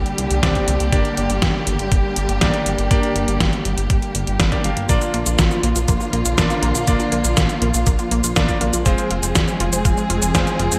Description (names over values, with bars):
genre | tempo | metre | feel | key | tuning
italo disco | 121 BPM | 4/4 | straight | unclear | A4 = 441 Hz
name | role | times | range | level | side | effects
dark symphonic string section | sustained chords | 0.0-10.8 s | D3 to Ab4 | -26 LUFS | equal | none
clear electric grand piano | stabs | 0.0-10.8 s | Ab3 to F5 | -28 LUFS | equal | subtle chorus, digital delay
chorused synth bass | bass | 0.0-10.8 s | F1 to C2 | -25 LUFS | equal | tube saturation
detuned 8-bit digital drum machine | drums | 0.1-10.8 s | cabasa, hi-hat, snare drum | -24 LUFS | equal | gated reverb
electronic kick drum | drums | 0.4-10.4 s | none | -22 LUFS | equal | none
analog pluck | arpeggios | 4.9-10.8 s | Bb3 to C5 | -28 LUFS | equal | chorus, digital delay
room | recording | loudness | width
moderate plate reverb, RT60 1.9 s | bright 1980s-style digital production | -18 LUFS | mono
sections
0.0-10.8 A section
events
none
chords
0.0 Csus2; 0.9 Gm; 4.9 Bb; 8.9 Fm